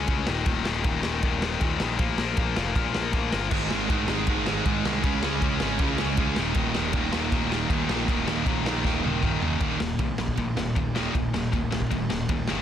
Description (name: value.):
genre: punk rock.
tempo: 157 BPM.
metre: 4/4.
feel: straight.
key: unclear.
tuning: A4 = 440 Hz.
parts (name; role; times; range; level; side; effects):
tight distorted guitar; riff; 0.0-12.6 s; Eb2 to Db4; -28 LUFS; left 8 dB; distortion.
fuzz picked electric bass; bass; 0.0-12.6 s; Eb1 to Ab2; -32 LUFS; equal; overdrive.
raw garage drum kit; drums; 0.1-12.6 s; crash cymbal, kick drum, ride cymbal, snare drum, toms; -28 LUFS; equal; none.
sludgy distorted guitar; riff; 3.5-12.6 s; Eb2 to Db4; -29 LUFS; right 12 dB; overdrive.
room: light reverb.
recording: dense, heavily limited modern master.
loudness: -23 LUFS.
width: side -10 dB against mid.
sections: 0.0-9.6 A section; 9.6-12.6 B section.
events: drum fill 8.9-9.6.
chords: 0.3 Eb5; 2.0 Bb5; 3.5 Ab5; 5.0 Db5; 6.4 Eb5.